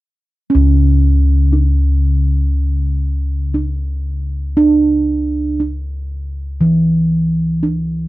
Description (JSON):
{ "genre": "gamelan", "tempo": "59 BPM", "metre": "4/4", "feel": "straight", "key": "unclear", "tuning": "A4 = 440 Hz", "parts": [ { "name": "gamelan-type bossed gongs", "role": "bass", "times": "0.5-8.1 s", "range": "C#2 to D4+35c", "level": "-13 LUFS", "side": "equal", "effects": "none" } ], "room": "little or no reverb", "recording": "dry, close 1970s-style studio recording", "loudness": "-13 LUFS", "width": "side -17 dB against mid", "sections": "0.5-8.1 A section", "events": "none", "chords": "none" }